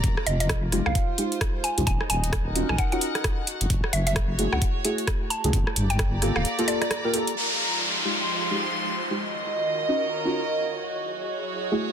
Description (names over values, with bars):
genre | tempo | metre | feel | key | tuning
UK garage, two-step garage | 131 BPM | 4/4 | swing 60% on 16ths | unclear | A4 = 440 Hz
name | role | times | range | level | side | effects
deep soft wobble bass | bass | 0.0-6.4 s | D1 to Db2 | -25 LUFS | equal | chorus, sidechain pumping
electronic kick drum | drums | 0.0-6.1 s | none | -26 LUFS | equal | none
garage drum kit | drums | 0.0-7.3 s | hi-hat, rim click | -29 LUFS | equal | low-pass filter on hats, soft clipping on snare, low-pass filter on snare, low-pass filter on room
warm studio string section | texture | 0.0-11.9 s | Eb4 to C6 | -30 LUFS | equal | sidechain pumping
mallet-like synth pluck | melody | 0.3-6.9 s | D5 to A5 | -31 LUFS | right 1 dB | chorus, dub echo
deep mellow chord stab | stabs | 0.7-11.9 s | Ab3 to Bb4 | -29 LUFS | equal | chorus, dub echo
soft string machine | sustained chords | 7.4-11.9 s | Eb3 to Db5 | -33 LUFS | right 1 dB | phaser, ensemble chorus, sidechain pumping
downlifter | sound effects | 7.4-11.0 s | none | -28 LUFS | equal | none
room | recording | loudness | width
moderate plate reverb, RT60 1.3 s | dense, heavily limited modern master | -22 LUFS | side -8 dB against mid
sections
0.0-7.4 A section; 7.4-11.9 B section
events
filter sweep on synth stab 0.0-7.4, 7.4-11.9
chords
0.0 Fm9; 1.9 Ebm9; 3.5 Gbm9; 5.5 Gm9; 7.4 Fm9; 9.2 Ebm9; 10.8 Gbm9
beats
| 0.04 0.49 0.95 1.41 | 1.87 2.33 2.79 3.24 | 3.70 4.16 4.62 5.08 | 5.53 5.99 6.45 6.91 | 7.37 7.82 8.28 8.74 | 9.20 9.65 10.11 10.57 | 11.03 11.49